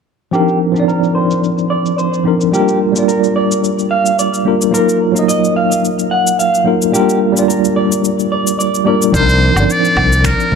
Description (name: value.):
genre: sunset chillout.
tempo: 109 BPM.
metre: 4/4.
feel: swing 53% on 16ths.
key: unclear.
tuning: A4 = 435 Hz.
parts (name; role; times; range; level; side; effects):
mellow tine electric piano; accompaniment; 0.3-10.6 s; F3 to Eb5; -13 LUFS; moving between left 5 dB and right 5 dB; overdrive, fast stereo tremolo, auto-pan, tape echo.
electric guitar through a small old amp; arpeggios; 0.3-9.1 s; G4 to Gb5; -17 LUFS; right 2 dB; low-pass filter, tape echo.
electronic cabasa, woodblock and finger snaps; drums; 0.3-10.5 s; none; -22 LUFS; left 3 dB; low-pass filter on perc, low-pass filter on snare.
modern bright fingered electric bass; bass; 9.1-10.6 s; G1 to C2; -14 LUFS; equal; tube saturation.
electronic kick drum; drums; 9.1-10.6 s; none; -19 LUFS; equal; none.
trumpet with metal mute; melody; 9.2-10.6 s; Bb4 to D5; -14 LUFS; equal; tape echo.
room: moderate plate reverb, RT60 3.1 s.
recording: none.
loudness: -11 LUFS.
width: side -6 dB against mid.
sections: 0.3-9.1 A section; 9.1-10.6 B section.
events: filter sweep on clean electric guitar 0.3-9.1.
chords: 0.3 Cm11; 2.5 Bb6; 4.7 Ebmadd9; 6.9 Bb6; 9.1 Cm11.